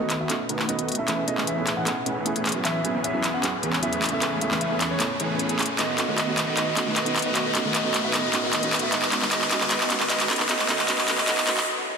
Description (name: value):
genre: future bass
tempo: 153 BPM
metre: 4/4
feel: half-time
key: A lydian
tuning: A4 = 441 Hz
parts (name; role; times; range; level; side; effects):
- clear concert grand piano; melody; 0.0-11.7 s; C#5 to F#5; -30 LUFS; right 2 dB; low-pass filter, dub echo
- felt-muted upright piano; accompaniment; 0.0-11.6 s; F#3 to B4; -32 LUFS; right 3 dB; dub echo
- shimmering ambient pad; sustained chords; 0.0-12.0 s; A2 to G#4; -37 LUFS; left 1 dB; chorus, built-in reverb
- supersaw chords; riff; 0.0-11.6 s; D#3 to B4; -28 LUFS; equal; low-pass filter
- riser; sound effects; 0.5-11.7 s; none; -31 LUFS; left 2 dB; none
- trap drum kit; drums; 0.1-11.6 s; handclaps, hi-hat; -25 LUFS; equal; high-pass filter on snare, high-pass filter on hats
room: wet lush hall reverb, RT60 1.9 s, digital ambience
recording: dense, heavily limited modern master, high-pass filter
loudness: -21 LUFS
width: side -6 dB against mid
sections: 0.0-12.0 A section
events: build-up 0.0-12.0; drum fill 0.0-11.7; filter sweep on supersaw synth 0.0-12.0; filter sweep on ambient pad 0.0-12.0; filter sweep 0.0-12.0; riser 0.5-11.7; break 11.7-12.0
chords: 0.0 B7; 1.1 Amaj9; 5.8 B7; 7.4 Amaj9; 8.9 E6; 10.3 Amaj9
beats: 0.30 0.69 | 1.08 1.47 1.86 2.26 | 2.65 3.04 3.43 3.83 | 4.22 4.61 5.00 5.39 | 5.79 6.18 6.57 6.96 | 7.36 7.75 8.14 8.53 | 8.92 9.32 9.71 10.10 | 10.49 10.88 11.28 11.67